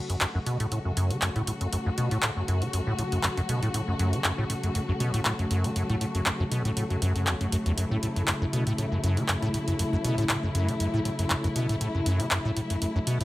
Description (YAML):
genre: acid house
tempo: 119 BPM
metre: 4/4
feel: swing 54% on 16ths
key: F# minor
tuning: A4 = 441 Hz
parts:
  - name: warm studio string section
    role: sustained chords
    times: 0.0-13.2 s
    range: C#3 to F#4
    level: -30 LUFS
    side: left 1 dB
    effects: none
  - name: acid bass, square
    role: riff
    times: 0.1-13.2 s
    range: E2 to C#3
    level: -27 LUFS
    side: equal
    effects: tube saturation, analog chorus
  - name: punchy analog drum machine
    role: drums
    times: 0.1-13.2 s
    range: handclaps, hi-hat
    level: -30 LUFS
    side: equal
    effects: overdrive
room: light reverb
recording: none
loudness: -25 LUFS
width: side -17 dB against mid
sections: 0.0-13.2 A section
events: none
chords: 0.0 F#m